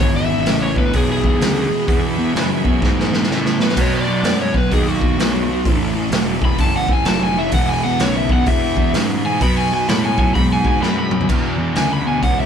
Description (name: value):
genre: blues rock power trio and southern rock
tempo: 128 BPM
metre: 4/4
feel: swing 63% on 8ths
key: E major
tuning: A4 = 439 Hz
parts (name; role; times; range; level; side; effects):
- overdriven slide guitar; melody; 0.0-12.5 s; F#4 to B5; -21 LUFS; equal; none
- bright tonewheel organ; sustained chords; 0.0-12.5 s; G#3 to B4; -32 LUFS; right 3 dB; none
- thick fuzz guitar; riff; 0.0-12.5 s; E2 to G#3; -20 LUFS; equal; distortion
- fuzz picked electric bass; bass; 0.0-12.5 s; E1 to B2; -22 LUFS; equal; overdrive
- raw garage drum kit; drums; 0.0-12.4 s; crash cymbal, hi-hat, kick drum, snare drum, toms; -19 LUFS; equal; none
room: light reverb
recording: band playing live in one room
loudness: -15 LUFS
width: side -8 dB against mid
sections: 0.0-11.3 A section; 11.3-12.5 B section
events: electric slide guitar solo 0.0-11.3; drum fill 2.8-3.8, 10.8-11.3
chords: 0.0 E; 3.8 B; 5.6 A; 7.5 E; 9.4 B; 11.3 E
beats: 0.47 0.94 1.41 | 1.88 2.35 2.82 3.29 | 3.76 4.24 4.71 5.18 | 5.65 6.12 6.59 7.06 | 7.53 8.00 8.47 8.94 | 9.41 9.88 10.35 10.82 | 11.29 11.76 12.23